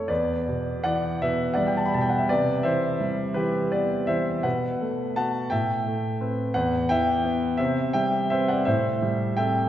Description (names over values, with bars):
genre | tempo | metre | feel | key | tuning
classical, impressionist solo piano | 56 BPM (dotted quarters) | 6/8 | rubato | E minor | A4 = 442 Hz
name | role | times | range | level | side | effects
clear concert grand piano | solo | 0.0-9.7 s | E2 to B5 | -22 LUFS | equal | none
room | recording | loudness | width
wet concert hall reverb, RT60 2.2 s | heard from further back in the room, nothing above 7.8 kHz | -22 LUFS | side -11 dB against mid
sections
0.1-9.7 A section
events
none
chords
0.1 Em7; 2.3 Cmaj7; 4.4 B5; 5.5 Am9; 6.5 Em; 7.6 Cmaj7; 8.7 Am7